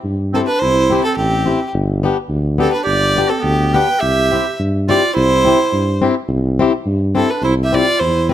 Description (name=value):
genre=alpine folk, alpine dance band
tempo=106 BPM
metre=2/4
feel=swing 54% on 8ths, rubato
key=C major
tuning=A4 = 439 Hz
part: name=mellow tuba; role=bass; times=0.0-8.3 s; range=G1 to G2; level=-18 LUFS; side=equal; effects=none
part: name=rich fiddle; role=melody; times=0.3-8.3 s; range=G4 to G5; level=-17 LUFS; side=right 1 dB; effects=none
part: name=bright clarinet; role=second line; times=0.3-8.3 s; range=B3 to B4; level=-20 LUFS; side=right 6 dB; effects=none
part: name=fingerpicked plugged-in swing-style acoustic guitar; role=accompaniment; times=0.3-8.3 s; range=B3 to G4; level=-18 LUFS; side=left 6 dB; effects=none
room=light reverb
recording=close, detailed microphones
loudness=-13 LUFS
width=side -11 dB against mid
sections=0.0-8.3 A section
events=none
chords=0.0 C; 1.7 G; 4.0 C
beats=0.04 | 0.61 1.18 | 1.74 2.31 | 2.87 3.45 | 4.02 4.59 | 5.17 5.73 | 6.29 6.86 | 7.42 8.00